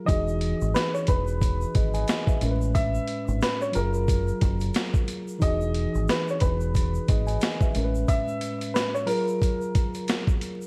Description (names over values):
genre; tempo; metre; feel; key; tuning
hip hop, boom-bap hip-hop; 90 BPM; 4/4; swing 57% on 16ths; E major; A4 = 443 Hz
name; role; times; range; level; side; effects
mellow tine electric piano; accompaniment; 0.0-10.7 s; A2 to G#5; -32 LUFS; equal; cassette tape, high-pass filter, low-pass filter
dark upright piano; melody; 0.1-10.2 s; A#4 to E5; -33 LUFS; equal; high-pass filter, low-pass filter, analog delay
deep dub fingered electric bass; bass; 0.1-8.0 s; E1 to A1; -29 LUFS; equal; none
boom bap sampler-style drum kit; drums; 0.1-10.6 s; hi-hat, kick drum, snare drum; -27 LUFS; equal; none
tube shaker; percussion; 0.1-10.7 s; none; -52 LUFS; equal; none
room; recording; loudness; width
digital ambience; vinyl crackle; -25 LUFS; mono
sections
0.1-10.7 A section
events
none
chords
0.1 Emaj9; 2.4 Amaj9; 3.8 F#maj9; 5.4 Emaj9; 7.8 Amaj9; 9.1 F#maj9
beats
| 0.09 0.75 1.42 2.08 | 2.75 3.42 4.08 4.75 | 5.42 6.08 6.75 7.42 | 8.09 8.75 9.42 10.09